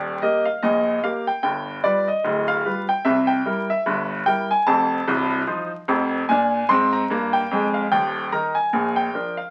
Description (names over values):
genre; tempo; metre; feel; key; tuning
ragtime piano; 74 BPM; 2/4; swing 58% on 16ths; Eb major; A4 = 442 Hz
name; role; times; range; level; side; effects
clear baby grand piano; solo; 0.0-9.5 s; C1 to C6; -22 LUFS; equal; none
room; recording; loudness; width
moderate small room reverb, RT60 0.5 s; very old 78 rpm record, vinyl crackle; -21 LUFS; mono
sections
0.0-9.5 A section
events
none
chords
0.0 Eb; 1.4 G7; 3.1 C7; 4.7 F7; 6.3 Bb7; 7.9 Eb; 8.7 Bb